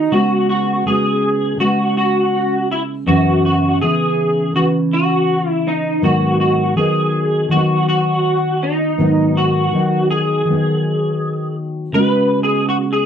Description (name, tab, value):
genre	indie pop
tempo	81 BPM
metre	4/4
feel	swing 55% on 16ths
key	G# minor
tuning	A4 = 440 Hz
part	electric guitar through a small old amp	melody	0.0-13.1 s	D#4 to B4	-17 LUFS	equal	ensemble chorus, slapback echo
part	nylon-string guitar	accompaniment	0.0-13.1 s	F#2 to F#4	-17 LUFS	equal	lush chorus, warbly pitch drift
room	light reverb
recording	dry, close 1970s-style studio recording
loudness	-14 LUFS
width	side -8 dB against mid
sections	0.0-11.9 A section; 11.9-13.1 B section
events	clean electric guitar solo 11.9-13.1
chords	0.1 C#7sus4; 3.1 F#7sus4; 6.0 G#m7; 11.9 C#7sus4